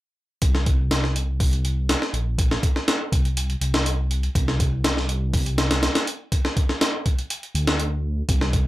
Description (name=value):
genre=breakbeat, breaks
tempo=122 BPM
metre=4/4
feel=straight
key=unclear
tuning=A4 = 439 Hz
part: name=dark detuned saw bass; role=bass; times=0.4-8.7 s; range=Bb1 to D2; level=-23 LUFS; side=equal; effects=none
part: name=breakbeat sampler-style drum kit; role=drums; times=0.4-8.7 s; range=hi-hat, kick drum, snare drum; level=-21 LUFS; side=equal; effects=none
room=little or no reverb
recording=none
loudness=-20 LUFS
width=side -16 dB against mid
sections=0.4-8.7 A section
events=none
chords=none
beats=| 0.42 0.91 1.40 1.89 | 2.38 2.88 3.37 3.86 | 4.35 4.84 5.33 5.83 | 6.32 6.81 7.30 7.79 | 8.29